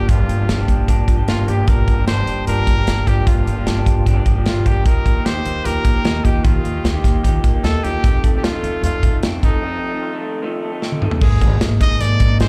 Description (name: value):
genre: jangly indie pop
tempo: 151 BPM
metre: 4/4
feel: straight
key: G minor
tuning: A4 = 440 Hz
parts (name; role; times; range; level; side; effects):
- bright trumpet; melody; 0.0-12.5 s; Eb4 to Eb5; -27 LUFS; equal; plate reverb, slapback echo, analog delay
- electric guitar through a small old amp; accompaniment; 0.0-12.5 s; F2 to Ab4; -28 LUFS; equal; plate reverb, slapback echo
- electric guitar through a small old amp; arpeggios; 0.0-12.5 s; F2 to Ab4; -30 LUFS; equal; plate reverb, slapback echo, analog delay
- upright bass; bass; 0.0-12.5 s; G1 to Ab2; -22 LUFS; equal; none
- modern studio drum kit; drums; 0.1-12.5 s; crash cymbal, hi-hat, kick drum, snare drum, toms; -19 LUFS; equal; none
- warm upright piano; accompaniment; 11.2-12.5 s; Bb3 to Ab4; -34 LUFS; equal; none
room: little or no reverb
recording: live gig heard through the venue's PA, club reverb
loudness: -17 LUFS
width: mono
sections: 0.0-11.2 A section; 11.2-12.5 B section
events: break 9.6-11.2; drum fill 10.8-11.2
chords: 0.0 Gm7; 4.9 Ebadd9; 8.0 F7; 11.2 Absus2